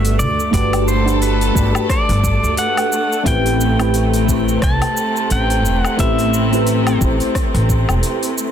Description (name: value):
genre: sunset chillout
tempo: 88 BPM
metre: 4/4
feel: swing 58% on 16ths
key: unclear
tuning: A4 = 440 Hz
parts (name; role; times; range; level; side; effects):
- pedal steel guitar; melody; 0.0-7.0 s; B4 to A5; -21 LUFS; equal; tape echo
- mellow FM electric piano; accompaniment; 0.0-8.5 s; A3 to D5; -20 LUFS; moving between left 4 dB and right 5 dB; chorus, phaser, auto-pan, tape echo
- rich chamber string section; sustained chords; 0.0-8.5 s; C3 to A4; -23 LUFS; equal; none
- upright bass; bass; 0.0-8.0 s; E1 to D2; -18 LUFS; equal; tube saturation
- deep house drum kit; drums; 0.0-8.5 s; hi-hat, rim click, shaker, woodblock; -26 LUFS; left 1 dB; studio reverb
- electronic kick drum; drums; 0.5-7.8 s; none; -20 LUFS; equal; studio reverb
room: light reverb, digital ambience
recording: dense, heavily limited modern master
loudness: -14 LUFS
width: side -9 dB against mid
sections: 0.0-8.5 A section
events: none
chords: 0.0 Gmaj9; 3.3 Am9